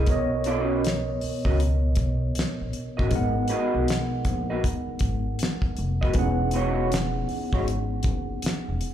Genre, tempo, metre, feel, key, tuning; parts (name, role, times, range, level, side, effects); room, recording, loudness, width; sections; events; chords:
R&B, neo-soul; 79 BPM; 4/4; swing 63% on 16ths; B major; A4 = 440 Hz
electric guitar through a small old amp; second line; 0.0-7.7 s; G#3 to D#5; -29 LUFS; right 1 dB; analog chorus, slapback echo
tine electric piano; accompaniment; 0.0-8.9 s; B2 to F#5; -29 LUFS; right 1 dB; overdrive, medium stereo tremolo, slapback echo
upright bass; bass; 0.0-8.8 s; E1 to C#2; -27 LUFS; equal
damped 70s drum kit; drums; 0.1-8.9 s; hi-hat, kick drum, snare drum; -27 LUFS; equal
small room ambience; live gig heard through the venue's PA, club reverb; -23 LUFS; side -10 dB against mid
0.0-8.9 A section
0.1 Bmaj9; 3.1 G#m9; 6.2 Emaj13